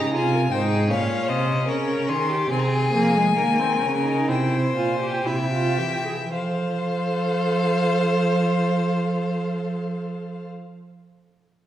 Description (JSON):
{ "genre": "classical, baroque-style fugue for string quartet", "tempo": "54-81 BPM", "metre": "4/4", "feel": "straight", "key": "F minor", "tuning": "A4 = 440 Hz", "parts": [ { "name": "warm violin", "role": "melody", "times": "0.0-10.5 s", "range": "Db5 to C6", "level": "-27 LUFS", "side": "left 5 dB", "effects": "none" }, { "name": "rich violin", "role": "second line", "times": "0.0-10.5 s", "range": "G4 to E5", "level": "-27 LUFS", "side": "left 1 dB", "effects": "none" }, { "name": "dark viola", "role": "accompaniment", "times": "0.0-10.5 s", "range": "Ab3 to A4", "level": "-27 LUFS", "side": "right 2 dB", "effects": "none" }, { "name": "warm cello", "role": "bass", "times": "0.0-10.5 s", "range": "Ab2 to F3", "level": "-24 LUFS", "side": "right 2 dB", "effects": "none" } ], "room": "wet recital hall reverb, RT60 1.6 s", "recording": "heard from further back in the room", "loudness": "-20 LUFS", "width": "side -12 dB against mid", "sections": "0.0-6.3 A section; 6.3-10.8 B section", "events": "slowing down 0.0-6.3", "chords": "0.0 Fm; 0.9 Bbm; 2.5 Fm/C; 4.3 C7; 6.3 F" }